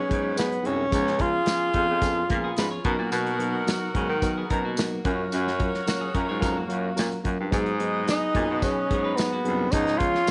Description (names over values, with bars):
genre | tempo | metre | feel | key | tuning
uptempo 1960s-style soul | 109 BPM | 4/4 | straight | G# dorian | A4 = 439 Hz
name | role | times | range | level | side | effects
breathy tenor saxophone | melody | 0.0-2.9, 8.1-10.3 s | B3 to E#4 | -27 LUFS | equal | none
bright saxophone section | second line | 0.0-10.3 s | C#4 to D#5 | -35 LUFS | equal | none
mellow reed electric piano | accompaniment | 0.0-10.3 s | E#3 to A#5 | -33 LUFS | equal | fast tremolo
warm baritone saxophone | bass | 0.1-10.1 s | B#1 to D#3 | -32 LUFS | equal | none
natural country drum kit | drums | 0.1-10.3 s | hi-hat, kick drum, snare drum | -31 LUFS | equal | none
tambourine | percussion | 0.4-10.3 s | none | -40 LUFS | equal | none
breathy baritone saxophone | riff | 0.7-10.0 s | E#2 to B2 | -38 LUFS | equal | none
clean electric guitar | riff | 2.3-9.7 s | G#3 to C#5 | -36 LUFS | equal | none
room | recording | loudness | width
light reverb | nothing above 10.5 kHz | -25 LUFS | mono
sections
0.0-10.3 A section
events
reed electric piano fill 6.4-7.5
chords
0.0 G#m7; 0.9 C#7; 2.8 Bmaj7; 5.0 F#maj7; 7.5 G#m7; 9.7 C#7